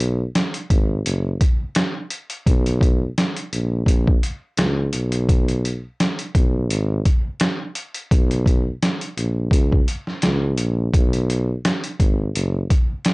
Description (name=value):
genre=hip hop, boom-bap hip-hop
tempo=85 BPM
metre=4/4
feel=swing 54% on 16ths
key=unclear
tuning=A4 = 441 Hz
part: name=dark tuba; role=bass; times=0.0-12.6 s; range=F#1 to C#2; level=-21 LUFS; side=equal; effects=transformer saturation
part: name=trip hop sampler-style drum kit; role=drums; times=0.0-13.1 s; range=hi-hat, kick drum, snare drum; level=-18 LUFS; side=equal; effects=none
room=light reverb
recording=dry, gritty hardware recording, transformer saturation, cassette tape, nothing above 10.3 kHz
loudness=-18 LUFS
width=side -26 dB against mid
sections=0.0-13.1 A section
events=none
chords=none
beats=0.34 1.05 1.75 | 2.46 3.17 3.87 4.58 | 5.29 5.99 6.70 7.40 | 8.11 8.81 9.52 10.23 | 10.93 11.64 12.34 13.05